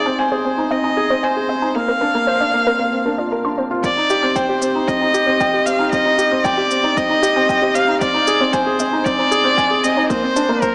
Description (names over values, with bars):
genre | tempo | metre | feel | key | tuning
piano and strings electronica | 115 BPM | 4/4 | straight | C minor | A4 = 440 Hz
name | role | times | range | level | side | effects
rich violin | melody | 0.0-10.7 s | Bb4 to F5 | -20 LUFS | equal | none
warbly dusty pluck | arpeggios | 0.0-10.6 s | Bb4 to C6 | -28 LUFS | equal | none
felt-muted upright piano | riff | 0.0-10.7 s | Bb3 to Ab5 | -21 LUFS | equal | none
electronic kick drum | drums | 3.8-10.7 s | none | -30 LUFS | equal | none
shaker | drums | 3.8-10.7 s | none | -32 LUFS | equal | none
room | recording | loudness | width
moderate echo chamber reverb, RT60 2.1 s | small speaker sound | -17 LUFS | mono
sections
0.0-3.8 A section; 3.8-10.7 B section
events
build-up 3.8-10.7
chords
0.0 Ab; 1.8 Bbadd9; 3.8 Cm; 8.0 Ab; 10.1 Bbadd9